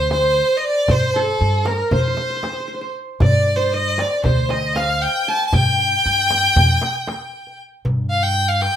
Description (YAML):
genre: Turkish makam ensemble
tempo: 233 BPM (eighths)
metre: 9/8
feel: straight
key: G makam ussak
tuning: A4 = 440 Hz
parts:
  - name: clear violin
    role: melody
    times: 0.0-8.8 s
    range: A4-30c to A5-37c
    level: -18 LUFS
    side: equal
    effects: plate reverb
  - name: clear studio violin section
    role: second line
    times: 0.0-7.5 s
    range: A4-30c to G5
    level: -29 LUFS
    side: equal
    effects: none
  - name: qanun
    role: second line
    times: 0.0-7.6 s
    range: A4-30c to A5-30c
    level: -26 LUFS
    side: right 1 dB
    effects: plate reverb
  - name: upright bass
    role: bass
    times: 0.0-8.7 s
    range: D2 to G2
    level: -21 LUFS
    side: equal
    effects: none
  - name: darbuka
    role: percussion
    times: 0.1-8.7 s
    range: none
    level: -23 LUFS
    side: equal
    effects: none
  - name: frame drum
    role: percussion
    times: 0.1-7.2 s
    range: none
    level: -25 LUFS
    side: equal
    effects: none
room: wet studio reverb, RT60 0.5 s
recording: rough home demo mix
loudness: -15 LUFS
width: side -10 dB against mid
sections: 0.0-7.8 A section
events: none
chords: none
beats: 0.12 0.38 0.63 | 0.89 1.15 1.41 1.67 1.92 2.18 2.44 2.70 2.96 | 3.21 3.47 3.73 3.99 4.24 4.50 4.76 5.02 5.27 | 5.53 5.79 6.05 6.30 6.56 6.82 7.08 7.33 7.59 | 7.85 8.11 8.36 8.62